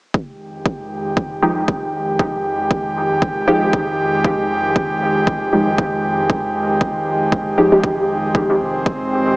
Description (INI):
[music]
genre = dub techno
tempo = 117 BPM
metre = 4/4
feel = swing 55% on 16ths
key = F minor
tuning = A4 = 442 Hz
[part]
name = airy breathy pad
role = sustained chords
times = 0.5-9.4 s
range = F2 to G4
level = -18 LUFS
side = equal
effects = chorus, sidechain pumping
[part]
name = electronic kick drum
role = drums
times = 0.1-9.0 s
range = none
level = -19 LUFS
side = equal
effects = overdrive
[part]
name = filtered dub chord stab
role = stabs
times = 1.4-7.9 s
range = F3 to G4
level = -18 LUFS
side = equal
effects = chorus, phaser, dub echo
[part]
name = round analog bass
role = bass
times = 8.6-9.1 s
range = F1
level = -35 LUFS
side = equal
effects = sidechain pumping
[sound]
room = wet lush hall reverb, RT60 2.1 s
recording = small speaker sound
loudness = -15 LUFS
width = side -23 dB against mid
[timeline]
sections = 0.1-9.4 A section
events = filter sweep on synth stab 0.1-9.4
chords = 0.1 Fm9